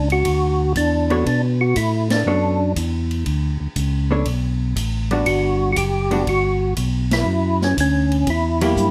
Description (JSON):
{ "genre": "soul jazz organ trio", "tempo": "120 BPM", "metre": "4/4", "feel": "swing 69% on 8ths", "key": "B minor", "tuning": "A4 = 441 Hz", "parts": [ { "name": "percussive tonewheel organ", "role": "melody", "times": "0.0-8.9 s", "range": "C#4 to G4", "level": "-22 LUFS", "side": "equal", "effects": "slow rotary speaker, chorus vibrato" }, { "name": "tonewheel organ", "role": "bass", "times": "0.0-8.9 s", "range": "F#1 to B2", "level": "-23 LUFS", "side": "equal", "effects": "overdrive, chorus vibrato" }, { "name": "swinging big-band drum kit", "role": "drums", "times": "0.1-8.9 s", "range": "hi-hat, kick drum, ride cymbal, snare drum", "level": "-31 LUFS", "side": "equal", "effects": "none" }, { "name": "vintage hollow-body jazz guitar", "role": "accompaniment", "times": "1.1-8.9 s", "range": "F#3 to C#5", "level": "-24 LUFS", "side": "equal", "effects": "none" } ], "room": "moderate club reverb, RT60 0.8 s", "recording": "none", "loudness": "-19 LUFS", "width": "mono", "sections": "0.0-8.9 A section", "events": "band accent 2.0, 7.0", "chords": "0.0 Bm9; 5.3 Gmaj7; 7.3 F#7b9" }